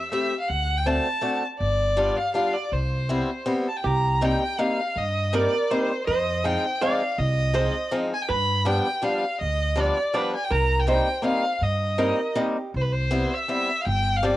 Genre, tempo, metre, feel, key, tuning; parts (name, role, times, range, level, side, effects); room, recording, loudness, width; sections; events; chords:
musette waltz; 162 BPM; 3/4; swing 54% on 8ths; C major, C minor from 3.8 s; A4 = 440 Hz
clear violin; melody; 0.0-14.4 s; B4 to B5; -26 LUFS; equal; cassette tape, plate reverb
picked swing-style acoustic guitar; accompaniment; 0.1-14.4 s; F3 to G4; -26 LUFS; left 1 dB; cassette tape, plate reverb
upright bass; bass; 0.5-14.3 s; G1 to G2; -25 LUFS; equal
archtop guitar, miked and amplified; second line; 3.8-12.7 s; G4 to D5; -28 LUFS; right 3 dB; cassette tape, plate reverb
moderate booth ambience, RT60 0.2 s; home recording on cassette; -21 LUFS; side -15 dB against mid
0.0-3.8 A section; 3.8-12.7 B section; 12.7-14.4 A section
0.5 D7; 1.6 G7; 2.7 Cmaj7; 3.8 Cm7; 6.1 Fm7; 8.3 G7; 10.5 Cm7; 12.7 Cmaj7; 13.9 G7sus4